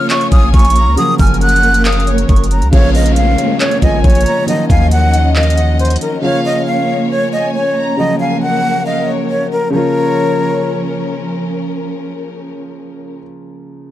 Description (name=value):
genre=hip hop, trap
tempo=137 BPM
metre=4/4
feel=half-time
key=Bb minor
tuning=A4 = 440 Hz
part: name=breathy jazz flute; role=melody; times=0.0-11.0 s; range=Bb4 to Gb6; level=-16 LUFS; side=equal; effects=ping-pong delay
part: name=dark grand piano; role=accompaniment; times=0.0-13.9 s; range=Db3 to F4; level=-19 LUFS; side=equal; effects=none
part: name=warm studio string section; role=sustained chords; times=0.0-13.2 s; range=Eb3 to Eb5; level=-21 LUFS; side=equal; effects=none
part: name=trap drum kit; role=drums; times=0.1-6.1 s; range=handclaps, hi-hat, kick drum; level=-14 LUFS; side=equal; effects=overdrive
part: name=warm symphonic violin section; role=second line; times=0.3-11.0 s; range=Db5 to Bb5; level=-25 LUFS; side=equal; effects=ping-pong delay
part: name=long sustained 808-style bass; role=bass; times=0.3-6.0 s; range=Gb1 to Eb2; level=-12 LUFS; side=equal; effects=none
part: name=downlifter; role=sound effects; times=2.7-6.2 s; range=none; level=-23 LUFS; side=left 1 dB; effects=none
room=small room ambience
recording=dark, warm production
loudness=-11 LUFS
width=side -13 dB against mid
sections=0.0-2.7 A section; 2.7-9.7 B section; 9.7-13.2 C section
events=none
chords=0.0 Bbm; 1.0 Gbmaj7; 2.7 Bbm; 4.5 Ebmadd9; 6.2 Bbm; 8.0 Gbmaj7; 9.7 Bbm